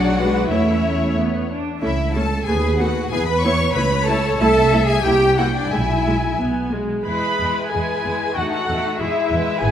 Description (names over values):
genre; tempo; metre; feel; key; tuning
quick classical-period movement for string orchestra; 87-96 BPM; 2/4; rubato; E major; A4 = 440 Hz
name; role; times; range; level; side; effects
warm chamber violin section; melody; 0.0-9.7 s; B4 to B5; -24 LUFS; left 4 dB; none
rich chamber violin section; second line; 0.0-9.7 s; G#3 to C#6; -25 LUFS; left 4 dB; none
rich chamber viola section; accompaniment; 0.0-9.7 s; F#3 to B4; -23 LUFS; right 1 dB; none
rich studio double bass section; bass; 0.0-9.7 s; G#1 to E2; -23 LUFS; right 2 dB; none
rich symphonic cello section; bass; 0.0-9.7 s; D4 to C#5; -22 LUFS; right 2 dB; none
room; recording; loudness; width
moderate concert hall reverb, RT60 2.0 s; none; -17 LUFS; side -9 dB against mid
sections
0.0-7.1 A section; 7.1-9.7 B section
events
none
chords
0.0 Bm; 0.5 A/E; 1.2 E5; 1.8 A/C#; 2.5 B7/D#; 3.1 E; 3.8 A/C#; 4.4 Am/C; 5.0 C7; 5.7 E/B; 6.4 G#m/B; 7.1 E; 8.4 Esus24; 9.0 E